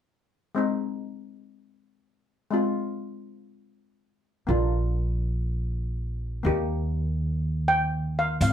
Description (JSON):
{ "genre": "calypso", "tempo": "122 BPM", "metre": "4/4", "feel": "straight", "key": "Ab major", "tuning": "A4 = 440 Hz", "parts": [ { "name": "steel pan", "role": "accompaniment", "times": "0.5-8.4 s", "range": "Ab3 to G4", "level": "-28 LUFS", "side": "left 2 dB", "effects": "none" }, { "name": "upright bass", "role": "bass", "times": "4.5-8.5 s", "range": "Ab1 to Eb2", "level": "-26 LUFS", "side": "right 1 dB", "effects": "none" }, { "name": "steel pan", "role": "melody", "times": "7.7-8.5 s", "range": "F5 to G5", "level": "-24 LUFS", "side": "equal", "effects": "none" }, { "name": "hi-hat", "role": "drums", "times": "8.4-8.5 s", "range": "none", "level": "-33 LUFS", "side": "right 3 dB", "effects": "none" } ], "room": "moderate studio reverb, RT60 0.5 s", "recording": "band playing live in one room", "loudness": "-25 LUFS", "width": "side -9 dB against mid", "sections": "0.6-8.4 A section", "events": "none", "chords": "0.6 Ab; 2.5 Fm; 4.5 Bb; 6.5 Eb" }